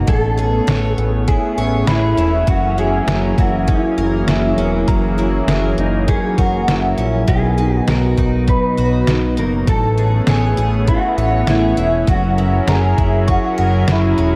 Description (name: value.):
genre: dream pop.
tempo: 100 BPM.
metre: 4/4.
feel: straight.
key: F# mixolydian.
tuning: A4 = 440 Hz.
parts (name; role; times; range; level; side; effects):
lush unison pad; sustained chords; 0.0-14.4 s; B2 to A#4; -23 LUFS; equal; chorus.
picked twelve-string acoustic guitar; arpeggios; 0.0-14.4 s; B2 to C#5; -25 LUFS; equal; subtle chorus, delay.
fat analog bass; bass; 0.0-14.4 s; E1 to B1; -21 LUFS; equal; none.
mellow electric guitar; melody; 0.1-14.3 s; D#4 to B4; -23 LUFS; equal; ensemble chorus, delay.
detuned 8-bit digital drum machine; drums; 0.1-14.3 s; hi-hat, kick drum, snare drum; -21 LUFS; equal; overdrive.
soft synth bell; texture; 1.9-6.1, 10.9-14.4 s; A#5 to C#6; -34 LUFS; equal; chorus, delay.
room: wet lush hall reverb, RT60 2.0 s.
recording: dreamy mix soaked in reverb.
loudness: -16 LUFS.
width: mono.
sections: 0.0-14.4 A section.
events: none.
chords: 0.1 Amaj9; 2.5 F#7; 7.3 Bmaj7; 9.7 Amaj9; 12.1 F#7.